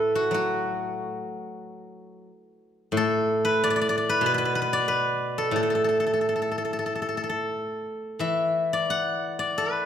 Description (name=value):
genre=chinese traditional, Chinese solo plucked strings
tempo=91 BPM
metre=4/4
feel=rubato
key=unclear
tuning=A4 = 439 Hz
part: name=steel-string zither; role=solo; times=0.0-9.9 s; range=A2 to F#5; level=-23 LUFS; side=left 1 dB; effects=none
room=moderate recital hall reverb, RT60 1.7 s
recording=recorded in a church or concert hall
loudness=-23 LUFS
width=side -9 dB against mid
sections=0.0-9.9 A section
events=none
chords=none